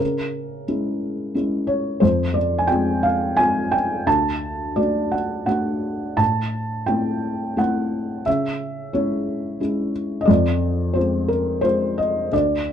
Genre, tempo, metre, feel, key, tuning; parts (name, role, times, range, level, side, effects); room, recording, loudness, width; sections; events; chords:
classical, lyrical solo piano; 88 BPM; 3/4; rubato; A4 = 441 Hz
felt-muted upright piano; solo; 0.0-12.7 s; D2 to A5; -19 LUFS; equal
light reverb; dark, warm production, faint mains hum; -19 LUFS; side -9 dB against mid
0.0-12.7 A section
0.0 C#m; 2.0 Fm; 4.1 D; 6.2 Am; 8.3 C#m; 10.3 Fm